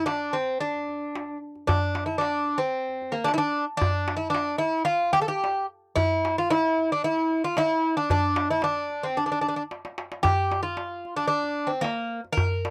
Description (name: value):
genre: Turkish makam ensemble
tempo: 112 BPM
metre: 4/4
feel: straight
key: D makam ussak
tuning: A4 = 439 Hz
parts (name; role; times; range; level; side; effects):
- Greek bouzouki; melody; 0.0-12.7 s; Bb3 to Bb4; -26 LUFS; equal; none
- darbuka; percussion; 0.1-12.7 s; none; -30 LUFS; equal; none
room: light reverb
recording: dry, close 1970s-style studio recording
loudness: -26 LUFS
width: mono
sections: 0.0-10.2 A section; 10.2-12.7 B section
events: drum fill 9.7-10.2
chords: none